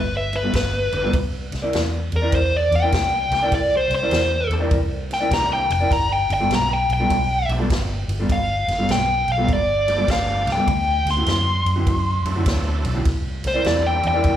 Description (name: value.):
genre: electric blues shuffle.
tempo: 101 BPM.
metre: 4/4.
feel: swing 65% on 8ths.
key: G mixolydian.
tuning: A4 = 440 Hz.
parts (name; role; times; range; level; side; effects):
dark smooth lead guitar; melody; 0.0-14.4 s; Bb4 to C6; -21 LUFS; left 1 dB; overdrive, slapback echo.
vintage muted fingered electric bass; bass; 0.0-14.4 s; F1 to F#2; -24 LUFS; equal; none.
mellow electric guitar; riff; 0.3-14.3 s; D3 to D5; -26 LUFS; equal; slapback echo.
swinging big-band drum kit; drums; 0.3-14.4 s; kick drum, ride cymbal, snare drum; -25 LUFS; equal; none.
bright tonewheel organ; accompaniment; 0.9-14.4 s; E3 to G4; -32 LUFS; right 5 dB; slow rotary speaker, overdrive, chorus vibrato, slapback echo.
room: light reverb, studio reverb.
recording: live gig heard through the venue's PA, club reverb.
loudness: -18 LUFS.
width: side -10 dB against mid.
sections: 0.0-14.4 A section.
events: lead electric guitar solo 0.0-14.4.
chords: 0.0 G9; 1.1 C9; 5.9 G9; 10.7 D9; 13.1 C9.